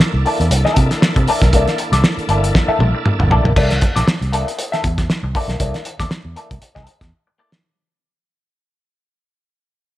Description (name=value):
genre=funk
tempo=118 BPM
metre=4/4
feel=swing 56% on 16ths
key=C mixolydian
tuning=A4 = 441 Hz
part: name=clean electric guitar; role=accompaniment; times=0.0-7.6 s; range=Bb3 to E5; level=-20 LUFS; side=left 2 dB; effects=wah, spring reverb
part: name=bright tonewheel organ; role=sustained chords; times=0.0-3.5 s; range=Bb3 to A4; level=-24 LUFS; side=equal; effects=chorus vibrato, slow rotary speaker
part: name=cloth-damped thuddy drum kit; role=drums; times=0.0-7.6 s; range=crash cymbal, hi-hat, kick drum, snare drum, toms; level=-17 LUFS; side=equal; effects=none
part: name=vintage muted fingered electric bass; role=bass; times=0.1-7.1 s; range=G1 to C3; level=-18 LUFS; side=equal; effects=none
room=light reverb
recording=none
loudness=-14 LUFS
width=side -15 dB against mid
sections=0.0-3.6 A section; 3.6-7.6 B section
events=drum fill 2.5-3.6, 7.1-7.6; fade-out 3.6-7.6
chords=0.0 C13